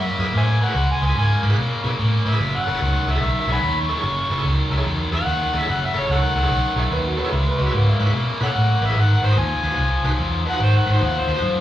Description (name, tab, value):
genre	electric blues shuffle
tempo	146 BPM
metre	4/4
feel	swing 64% on 8ths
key	C# minor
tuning	A4 = 440 Hz
part	overdriven harmonica	melody	0.0-11.5 s	A4 to C#6	-24 LUFS	left 1 dB	slapback echo, digital delay
part	biting overdriven guitar	riff	0.0-11.6 s	F#2 to A#3	-24 LUFS	left 2 dB	slapback echo
part	vintage muted fingered electric bass	bass	0.0-11.6 s	F#1 to B2	-20 LUFS	equal	none
part	bright tonewheel organ	accompaniment	0.2-11.4 s	D#4 to F#5	-31 LUFS	right 3 dB	slow rotary speaker, overdrive, chorus vibrato, slapback echo
part	warm upright piano	second line	6.8-8.4 s	F#4 to E5	-28 LUFS	right 3 dB	slapback echo, digital delay
room	little or no reverb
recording	live gig heard through the venue's PA, club reverb, small room ambience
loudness	-17 LUFS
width	side -12 dB against mid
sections	0.0-11.6 A section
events	none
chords	0.0 C#m7; 2.4 F#m7; 7.3 C#m7; 9.0 G#7#9